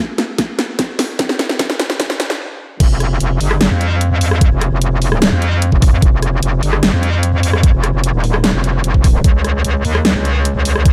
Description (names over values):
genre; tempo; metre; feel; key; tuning
heavy wobble dubstep; 149 BPM; 4/4; half-time; unclear; A4 = 439 Hz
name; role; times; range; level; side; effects
dubstep drum kit; drums; 0.2-10.9 s; crash cymbal, hi-hat, rim click, snare drum; -20 LUFS; equal; none
electronic kick drum; drums; 0.4-10.9 s; none; -14 LUFS; equal; overdrive
metallic wobble bass; bass; 2.8-10.9 s; Eb1 to F2; -17 LUFS; equal; chorus, overdrive
room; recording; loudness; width
light reverb; dark, warm production, high-pass filter; -15 LUFS; mono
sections
0.0-2.8 A section; 2.8-10.9 B section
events
build-up 0.0-2.8; drum fill 0.0-2.4; filter sweep 0.0-2.8; stop 2.4-2.8; drop 2.8-10.9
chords
none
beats
0.39 0.79 | 1.19 1.59 2.00 2.40 | 2.80 3.20 3.61 4.01 | 4.41 4.82 5.22 5.62 | 6.02 6.43 6.83 7.23 | 7.63 8.04 8.44 8.84 | 9.24 9.65 10.05 10.45 | 10.86